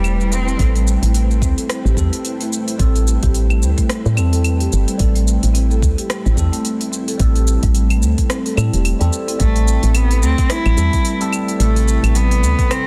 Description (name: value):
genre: organic downtempo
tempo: 109 BPM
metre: 4/4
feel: swing 58% on 16ths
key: A minor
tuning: A4 = 440 Hz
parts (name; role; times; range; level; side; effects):
- rich cello; melody; 0.0-0.6, 9.4-12.9 s; G3 to E4; -25 LUFS; equal; delay
- ethereal airy pad; sustained chords; 0.0-12.9 s; A3 to G5; -32 LUFS; equal; ensemble chorus, built-in reverb, sidechain pumping
- marimba with medium mallets; arpeggios; 0.0-12.7 s; G3 to A4; -28 LUFS; equal; tape echo
- woody FM bass; bass; 0.0-12.6 s; E1 to A2; -17 LUFS; equal; none
- organic electronic drum kit; drums; 0.0-12.8 s; claves, hi-hat, rim click, shaker; -27 LUFS; equal; overdrive, studio reverb
- bell-like tine electric piano; accompaniment; 0.6-12.9 s; C3 to A4; -27 LUFS; equal; phaser, sidechain pumping, tape echo
- electronic kick drum; drums; 0.6-12.7 s; none; -21 LUFS; equal; overdrive, studio reverb
room: little or no reverb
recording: dense, heavily limited modern master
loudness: -16 LUFS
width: mono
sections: 0.0-9.4 A section; 9.4-12.9 B section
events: none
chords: 0.0 Am7